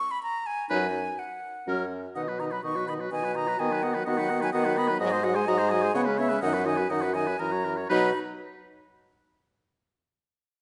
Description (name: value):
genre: quick classical-period movement for wind quintet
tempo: 125 BPM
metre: 3/4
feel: straight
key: B major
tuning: A4 = 439 Hz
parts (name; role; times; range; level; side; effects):
- concert flute; melody; 0.0-8.2 s; D#5 to C#6; -33 LUFS; equal; none
- clear oboe; second line; 0.7-8.1 s; A#4 to D#5; -35 LUFS; equal; none
- clear clarinet; accompaniment; 0.7-8.1 s; C#4 to G#4; -38 LUFS; equal; none
- mellow French horn; accompaniment; 0.7-8.1 s; D#3 to B3; -34 LUFS; equal; none
- mellow bassoon; bass; 0.7-8.1 s; F#2 to D#3; -31 LUFS; equal; none
room: moderate scoring stage reverb, RT60 1.6 s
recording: nothing above 10.7 kHz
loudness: -27 LUFS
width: mono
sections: 0.0-7.9 A section; 7.9-9.4 B section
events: none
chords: 0.0 N.C.; 0.7 B/F# (rootless); 1.7 F#; 2.2 B; 3.6 B/D#; 5.0 G#7; 5.9 C#m7; 6.4 B/F#; 7.4 F#7; 7.9 B